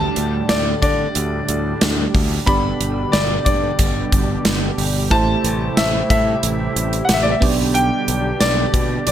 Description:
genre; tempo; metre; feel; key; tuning
1980s-style pop; 91 BPM; 4/4; straight; G major; A4 = 440 Hz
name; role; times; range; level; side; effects
clear concert grand piano; melody; 0.0-9.1 s; D5 to B5; -21 LUFS; left 2 dB; none
FM electric piano; accompaniment; 0.0-9.1 s; A3 to D5; -25 LUFS; right 5 dB; chorus
warm analog pad; sustained chords; 0.0-9.1 s; A2 to G4; -25 LUFS; right 1 dB; chorus, tremolo
modern bright fingered electric bass; bass; 0.0-9.1 s; G1 to D3; -22 LUFS; equal; none
gated 80s drum kit; drums; 0.2-9.1 s; hi-hat, kick drum, snare drum; -19 LUFS; equal; none
room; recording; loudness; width
light reverb, studio reverb; none; -15 LUFS; side -10 dB against mid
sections
0.0-9.1 A section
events
none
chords
0.0 Dsus4; 2.5 G; 5.1 Am7; 7.4 G/B

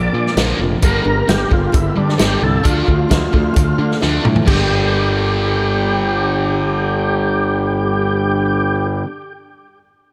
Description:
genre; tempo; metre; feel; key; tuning
classic rock; 132 BPM; 4/4; straight; G minor; A4 = 443 Hz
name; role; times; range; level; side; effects
overdriven tonewheel organ; melody; 0.0-8.9 s; D4 to D5; -23 LUFS; equal; chorus vibrato, slow rotary speaker, slapback echo
picked steel-string acoustic guitar; accompaniment; 0.0-9.2 s; G2 to Bb4; -29 LUFS; equal; none
distorted electric guitar; riff; 0.0-9.1 s; G2 to D4; -22 LUFS; equal; overdrive, slapback echo
fuzz fingered electric bass; bass; 0.0-9.0 s; F1 to D3; -22 LUFS; equal; overdrive
vintage drum kit; drums; 0.3-4.6 s; crash cymbal, hi-hat, kick drum, snare drum, toms; -20 LUFS; equal; none
cowbell; percussion; 0.4-4.7 s; none; -35 LUFS; equal; none
room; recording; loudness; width
moderate lush hall reverb, RT60 2.0 s, studio ambience; big arena sound; -16 LUFS; mono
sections
0.0-4.5 A section; 4.5-8.1 B section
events
drum fill 4.0-4.5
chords
0.0 Bb; 0.8 Gmadd9; 2.7 Dm; 4.5 Gmadd9

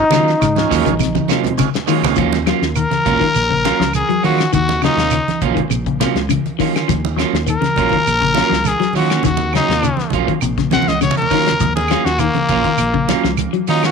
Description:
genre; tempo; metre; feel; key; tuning
afrobeat; 102 BPM; 4/4; straight; Eb dorian; A4 = 440 Hz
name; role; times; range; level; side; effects
bright trombone; melody; 0.0-1.6 s; Eb4; -17 LUFS; left 2 dB; none
combo organ; accompaniment; 0.0-2.2 s; Eb3 to F4; -23 LUFS; right 15 dB; none
electric guitar at the edge of break-up; arpeggios; 0.1-13.7 s; C3 to Gb3; -21 LUFS; left 12 dB; phaser
electric guitar at the edge of break-up; stabs; 0.1-13.9 s; Gb3 to F4; -21 LUFS; right 16 dB; none
fingered electric bass; bass; 0.1-13.9 s; Bb1 to Eb3; -21 LUFS; right 1 dB; none
damped 70s drum kit; drums; 0.1-13.9 s; hi-hat, kick drum, snare drum; -24 LUFS; left 7 dB; none
claves; percussion; 0.1-13.9 s; none; -28 LUFS; right 18 dB; none
congas; percussion; 0.1-13.5 s; none; -24 LUFS; right 11 dB; none
shekere; percussion; 0.1-13.8 s; none; -25 LUFS; right 11 dB; none
growling trumpet; melody; 2.8-13.9 s; Bb3 to Gb5; -18 LUFS; left 3 dB; tape echo
room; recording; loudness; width
light reverb, small room reverb; 1960s-style stereo with parts hard left and right; -14 LUFS; side -5 dB against mid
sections
0.0-2.2 A section; 2.2-13.9 B section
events
drum fill 1.0-2.2, 10.7-11.6; trumpet solo 2.2-13.9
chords
0.0 Ebm9

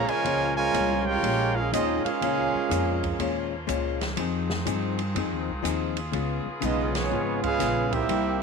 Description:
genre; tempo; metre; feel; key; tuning
jazz, big band swing; 122 BPM; 4/4; swing 66% on 8ths; unclear; A4 = 440 Hz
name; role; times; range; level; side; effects
clear trumpet section; melody; 0.0-3.5, 6.6-8.4 s; Cb4 to Ab5; -26 LUFS; right 2 dB; none
brilliant trombone section; second line; 0.0-3.5, 6.6-8.4 s; Db3 to G4; -30 LUFS; right 14 dB; none
hollow-body jazz guitar; accompaniment; 0.0-8.4 s; Bb2 to Ab4; -30 LUFS; left 14 dB; none
bright saxophone section; sustained chords; 0.0-8.4 s; C3 to Ab4; -36 LUFS; left 1 dB; none
upright bass; bass; 0.0-8.4 s; Ab1 to G2; -31 LUFS; equal; none
open jazz drum kit; drums; 0.1-8.2 s; hi-hat, kick drum, ride cymbal, snare drum; -35 LUFS; right 2 dB; none
room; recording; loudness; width
light reverb, small room ambience; 1960s-style stereo with parts hard left and right; -24 LUFS; side -5 dB against mid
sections
0.0-8.4 A section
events
band accent 6.9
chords
0.0 Bbm7; 4.2 Fm7; 6.1 Db7

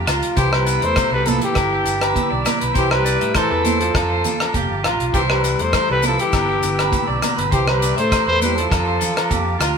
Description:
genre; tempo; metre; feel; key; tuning
highlife guitar band; 101 BPM; 4/4; straight; C major; A4 = 440 Hz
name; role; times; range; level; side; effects
breathy trumpet; melody; 0.0-9.6 s; G4 to C5; -22 LUFS; equal; none
growling alto saxophone; second line; 0.0-9.6 s; E3 to A3; -26 LUFS; left 4 dB; none
clean electric guitar; accompaniment; 0.0-9.8 s; F2 to F4; -27 LUFS; left 6 dB; none
tonewheel organ; sustained chords; 0.0-9.8 s; E5 to E6; -33 LUFS; left 1 dB; none
electric guitar at the edge of break-up; arpeggios; 0.0-9.8 s; F4 to E5; -24 LUFS; right 5 dB; none
fingered electric bass; bass; 0.0-9.7 s; F1 to A2; -24 LUFS; equal; none
damped 70s drum kit; drums; 0.1-9.8 s; hi-hat, kick drum, rim click; -23 LUFS; equal; none
agogo bells; percussion; 0.1-9.8 s; none; -26 LUFS; left 3 dB; none
maracas; percussion; 0.1-9.8 s; none; -32 LUFS; left 4 dB; none
congas; percussion; 0.4-9.5 s; none; -28 LUFS; right 4 dB; none
room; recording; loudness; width
wet stone room reverb, RT60 1.4 s; band playing live in one room; -16 LUFS; side -6 dB against mid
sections
0.0-9.8 A section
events
none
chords
0.4 Cadd9; 1.6 G6; 2.8 Cadd9; 3.9 F6; 5.1 Cadd9; 6.3 G6; 7.5 Cadd9; 8.7 F6

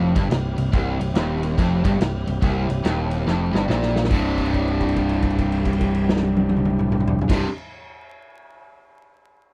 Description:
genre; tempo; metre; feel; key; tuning
blues rock power trio and southern rock; 142 BPM; 4/4; swing 63% on 8ths; C mixolydian; A4 = 439 Hz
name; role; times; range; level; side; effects
tonewheel organ; sustained chords; 0.0-7.5 s; C4 to G4; -36 LUFS; equal; slow rotary speaker, overdrive
crunchy overdriven guitar; riff; 0.0-7.5 s; C2 to C3; -24 LUFS; equal; none
picked electric bass; bass; 0.0-7.4 s; C1 to Bb1; -28 LUFS; equal; none
vintage drum kit; drums; 0.2-7.4 s; crash cymbal, kick drum, ride cymbal, snare drum, toms; -27 LUFS; equal; none
room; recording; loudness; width
little or no reverb; vinyl crackle; -21 LUFS; mono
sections
0.0-4.1 A section; 4.1-7.5 B section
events
drum fill 3.3-4.1; held note 4.1-7.2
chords
0.0 C

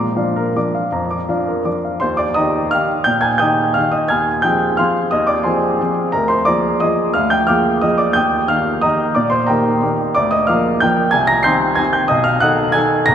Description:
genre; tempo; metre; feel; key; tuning
classical, piano waltz; 153-194 BPM; 3/4; rubato; Eb major; A4 = 440 Hz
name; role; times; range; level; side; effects
clear baby grand piano; solo; 0.0-13.1 s; Bb1 to C7; -14 LUFS; equal; none
room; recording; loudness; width
wet cathedral reverb, RT60 6.0 s; recorded in a church or concert hall; -14 LUFS; side -9 dB against mid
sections
0.0-2.0 A section; 2.0-13.1 B section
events
none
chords
0.0 Bb; 2.0 Eb; 4.1 Fm7/Eb; 6.1 Bb7/D; 8.2 Eb; 10.2 Bb/D; 11.1 Cm; 12.1 B7

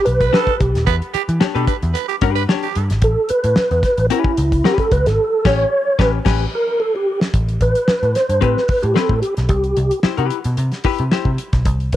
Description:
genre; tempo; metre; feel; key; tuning
funk; 111 BPM; 4/4; straight; unclear; A4 = 441 Hz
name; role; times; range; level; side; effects
mellow tonewheel organ; melody; 0.0-12.0 s; E4 to C#5; -18 LUFS; right 1 dB; chorus vibrato, fast rotary speaker
vintage muted picked electric bass; bass; 0.1-12.0 s; D#1 to E3; -18 LUFS; equal; none
damped 70s drum kit; drums; 0.1-12.0 s; crash cymbal, hi-hat, kick drum, snare drum; -20 LUFS; equal; none
growling tenor saxophone; second line; 0.2-2.8 s; G4 to B4; -23 LUFS; right 13 dB; none
vintage hollow-body jazz guitar; accompaniment; 0.3-11.3 s; C4 to C#5; -23 LUFS; left 12 dB; none
room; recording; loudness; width
light reverb, small room ambience; 1960s-style stereo with parts hard left and right; -15 LUFS; side -13 dB against mid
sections
0.0-7.3 A section; 7.3-12.0 B section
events
tonewheel organ solo 0.0-7.3; drum fill 5.2-7.3; band accent 5.2-7.3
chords
0.0 Em7; 3.0 A9; 7.3 Am9; 9.5 Cmaj7

